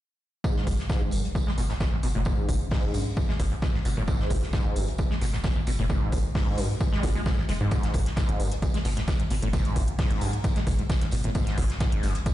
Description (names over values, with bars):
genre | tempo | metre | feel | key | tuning
driving peak-time techno | 132 BPM | 4/4 | straight | G# minor | A4 = 441 Hz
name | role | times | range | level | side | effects
screaming distorted acid line | riff | 0.4-12.1 s | G#1 to G#3 | -30 LUFS | equal | distortion, wide subtle chorus, vintage 12-bit sampler grit, sidechain pumping, dub echo
electronic kick drum | drums | 0.4-12.3 s | none | -26 LUFS | equal | none
loose indie drum kit | drums | 0.4-12.3 s | hi-hat, snare drum, tambourine | -40 LUFS | equal | high-pass filter on hats, high-pass filter on snare, high-pass filter on perc, high-pass filter on room
tight sequencer bass | bass | 0.7-12.2 s | F#1 to G#2 | -28 LUFS | equal | sidechain pumping
electronic hi-hat | drums | 0.7-12.3 s | none | -42 LUFS | left 1 dB | none
room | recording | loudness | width
light reverb, studio reverb | played on a big sound system in a bare room, large studio reverb, nothing above 10.7 kHz | -24 LUFS | side -14 dB against mid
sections
0.4-12.3 A section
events
filter sweep on acid bass 0.4-12.3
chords
none